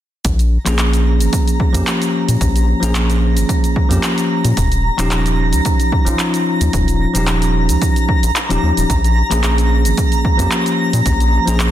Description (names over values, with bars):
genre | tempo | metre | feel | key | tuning
sunset chillout | 111 BPM | 4/4 | swing 54% on 16ths | Bb dorian | A4 = 438 Hz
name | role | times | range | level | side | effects
round analog bass | bass | 0.2-11.7 s | Eb1 to Bb2 | -15 LUFS | equal | none
deep house drum kit | drums | 0.2-11.7 s | handclaps, hi-hat, shaker | -22 LUFS | equal | overdrive, studio reverb
electronic kick drum | drums | 0.2-11.2 s | none | -17 LUFS | equal | overdrive, studio reverb
twinkling granular texture | texture | 1.0-11.7 s | Bb5 | -22 LUFS | right 1 dB | built-in reverb
bell-like tine electric piano | accompaniment | 0.6-11.7 s | F3 to Ab4 | -19 LUFS | moving between left 3 dB and right 7 dB | auto-pan, digital delay
room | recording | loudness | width
light reverb | dense, heavily limited modern master | -13 LUFS | side -12 dB against mid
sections
0.2-11.7 A section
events
none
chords
0.2 Bbm7; 4.6 Eb9; 8.9 Bbm7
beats
| 0.25 0.79 1.33 1.87 | 2.41 2.95 3.49 4.03 | 4.57 5.11 5.65 6.19 | 6.73 7.28 7.82 8.36 | 8.90 9.44 9.98 10.52 | 11.06 11.60